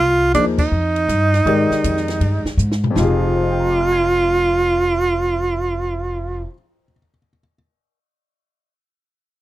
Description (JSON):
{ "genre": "modal jazz", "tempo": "160 BPM", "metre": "4/4", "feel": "swing 65% on 8ths", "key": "F dorian", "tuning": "A4 = 441 Hz", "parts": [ { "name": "breathy tenor saxophone", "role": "melody", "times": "0.0-6.5 s", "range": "D4 to F4", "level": "-17 LUFS", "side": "right 2 dB", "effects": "none" }, { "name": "upright bass", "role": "bass", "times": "0.0-6.4 s", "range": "F1 to Ab2", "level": "-21 LUFS", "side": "equal", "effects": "none" }, { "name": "warm baby grand piano", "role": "accompaniment", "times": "0.3-7.5 s", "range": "F2 to C7", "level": "-23 LUFS", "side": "left 4 dB", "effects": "none" }, { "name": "compact cocktail drum kit", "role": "drums", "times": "0.3-3.1 s", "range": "crash cymbal, hi-hat, kick drum, ride cymbal, snare drum, toms", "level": "-25 LUFS", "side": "left 1 dB", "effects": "none" } ], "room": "studio reverb", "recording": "dry, close 1970s-style studio recording", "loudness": "-15 LUFS", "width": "side -15 dB against mid", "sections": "0.0-3.0 A section; 3.0-6.0 B section", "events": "band accent 0.5; drum fill 2.6-3.0", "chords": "0.0 Fm9" }